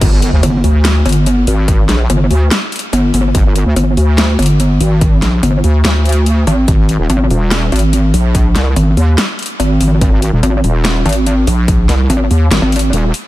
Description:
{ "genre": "heavy wobble dubstep", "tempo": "144 BPM", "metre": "4/4", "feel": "half-time", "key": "G phrygian", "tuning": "A4 = 444 Hz", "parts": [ { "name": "wobble bass", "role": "bass", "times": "0.0-13.1 s", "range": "Eb1 to Eb2", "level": "-11 LUFS", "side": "equal", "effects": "chorus, overdrive" }, { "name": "dubstep drum kit", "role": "drums", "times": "0.0-13.2 s", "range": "crash cymbal, hi-hat, snare drum", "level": "-19 LUFS", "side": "equal", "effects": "none" }, { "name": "electronic kick drum", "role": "drums", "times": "0.0-11.8 s", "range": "none", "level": "-12 LUFS", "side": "equal", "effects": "none" }, { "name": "impact", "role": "sound effects", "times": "0.0-1.7 s", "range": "none", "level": "-23 LUFS", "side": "equal", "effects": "none" }, { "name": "pulsing pluck wobble bass", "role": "bass", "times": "0.4-12.9 s", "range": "G1 to Ab1", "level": "-11 LUFS", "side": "equal", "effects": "chorus, overdrive" } ], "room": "digital ambience", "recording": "none", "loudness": "-9 LUFS", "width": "side -16 dB against mid", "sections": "0.0-13.3 A section", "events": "drop 0.0-13.3; impact 0.0-1.7; kick drops out 12.5-13.3", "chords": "0.0 G5; 6.7 Ab5", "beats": "| 0.01 0.43 0.85 1.26 | 1.68 2.10 2.51 2.93 | 3.35 3.76 4.18 4.60 | 5.01 5.43 5.85 6.26 | 6.68 7.10 7.51 7.93 | 8.35 8.76 9.18 9.60 | 10.01 10.43 10.85 11.26 | 11.68 12.10 12.51 12.93" }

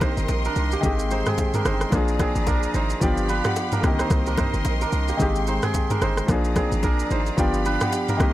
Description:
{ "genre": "afrobeats", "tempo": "110 BPM", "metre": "4/4", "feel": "swing 58% on 16ths", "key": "C minor", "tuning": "A4 = 445 Hz", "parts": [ { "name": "warm baby grand piano", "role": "accompaniment", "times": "0.0-8.3 s", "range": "D3 to Ab4", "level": "-27 LUFS", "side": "left 2 dB", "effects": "none" }, { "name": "bright studio string section", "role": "sustained chords", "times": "0.0-8.3 s", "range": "Ab3 to C6", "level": "-31 LUFS", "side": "left 1 dB", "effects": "sidechain pumping" }, { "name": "kora", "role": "riff", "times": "0.0-8.3 s", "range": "Bb3 to Eb5", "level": "-27 LUFS", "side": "right 5 dB", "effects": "tape echo" }, { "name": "warm 808-style bass", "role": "bass", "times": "0.0-8.3 s", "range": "G1 to C2", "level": "-25 LUFS", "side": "equal", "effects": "none" }, { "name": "afro-pop drum kit", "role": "drums", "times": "0.0-8.3 s", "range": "kick drum, rim click, shaker, toms", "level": "-25 LUFS", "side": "equal", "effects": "none" }, { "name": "bongos and congas", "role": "percussion", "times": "0.0-8.3 s", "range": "none", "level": "-32 LUFS", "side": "left 3 dB", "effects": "none" }, { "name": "downlifter", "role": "sound effects", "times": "0.0-0.8 s", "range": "none", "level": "barely audible", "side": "none", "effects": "none" } ], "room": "little or no reverb", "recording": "dry, gritty hardware recording", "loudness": "-20 LUFS", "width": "side -14 dB against mid", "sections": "0.0-8.3 A section", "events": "none", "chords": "0.0 Cm7; 0.8 Abmaj7; 1.9 Bb7; 3.0 G7; 3.8 Cm7; 5.2 Abmaj7; 6.3 Bb7; 7.4 G7", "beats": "0.29 | 0.83 1.38 1.93 2.47 | 3.02 3.56 4.11 4.65 | 5.20 5.74 6.29 6.83 | 7.38 7.92" }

